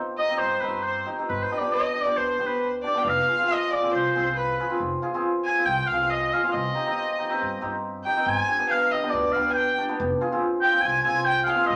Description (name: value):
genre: klezmer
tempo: 138 BPM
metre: 4/4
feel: straight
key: unclear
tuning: A4 = 440 Hz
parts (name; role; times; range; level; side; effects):
- warm oboe; melody; 0.2-11.8 s; B4 to Ab5; -26 LUFS; equal; none
- warm violin; second line; 0.2-11.8 s; B4 to Ab5; -32 LUFS; equal; none
- cimbalom; accompaniment; 0.2-11.7 s; B3 to Ab4; -29 LUFS; equal; none
- upright bass; bass; 0.4-11.8 s; F1 to G2; -38 LUFS; equal; none
room: wet studio reverb, RT60 0.8 s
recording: none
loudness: -24 LUFS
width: mono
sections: 0.0-11.8 A section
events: speeding up 0.0-11.8; oboe solo 0.0-11.8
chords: 0.0 Cm; 1.3 G; 3.1 Fm; 6.5 Cm; 8.3 G; 10.0 Fm